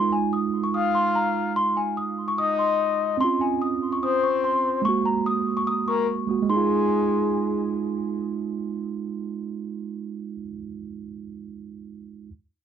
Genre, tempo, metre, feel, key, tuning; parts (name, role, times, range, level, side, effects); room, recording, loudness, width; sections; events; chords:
hip hop; 146 BPM; 4/4; half-time; F phrygian; A4 = 440 Hz
celesta; melody; 0.0-7.7 s; Ab5 to Eb6; -26 LUFS; left 1 dB; cassette tape
mellow tine electric piano; accompaniment; 0.0-12.3 s; Ab3 to Gb4; -26 LUFS; right 8 dB; cassette tape
breathy flute-like synth lead; second line; 0.7-7.7 s; Ab4 to F5; -26 LUFS; left 8 dB; chorus, cassette tape, analog delay
light reverb; home recording on cassette; -22 LUFS; side -8 dB against mid
0.0-6.5 A section; 6.5-9.8 B section
0.0 Fm7; 3.2 Dbmaj7; 4.8 Gbadd9; 6.5 Fm7